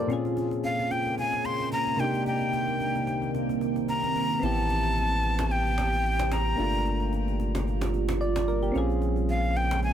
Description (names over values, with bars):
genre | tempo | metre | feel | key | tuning
amapiano | 111 BPM | 4/4 | swing 55% on 16ths | unclear | A4 = 440 Hz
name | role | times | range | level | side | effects
soft electric-piano-like synth keys | accompaniment | 0.0-9.9 s | Bb2 to D5 | -31 LUFS | left 2 dB | chorus
deep dark ambient pad | sustained chords | 0.0-9.9 s | C2 to B4 | -32 LUFS | right 3 dB | chorus, built-in reverb
cajon | drums | 0.1-9.9 s | none | -40 LUFS | equal | none
breathy bright jazz flute | melody | 0.6-9.9 s | F5 to C6 | -29 LUFS | left 1 dB | ping-pong delay
warm sub bass | bass | 4.4-9.9 s | G1 to Bb1 | -28 LUFS | equal | none
room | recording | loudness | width
light reverb, small room ambience | none | -24 LUFS | side -10 dB against mid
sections
0.0-9.9 A section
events
kick muted 2.3-4.4; synth keys fill 7.9-8.7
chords
0.1 Bbm9; 2.0 Cm9; 4.4 Am9; 6.6 Gm9; 8.7 Bbm9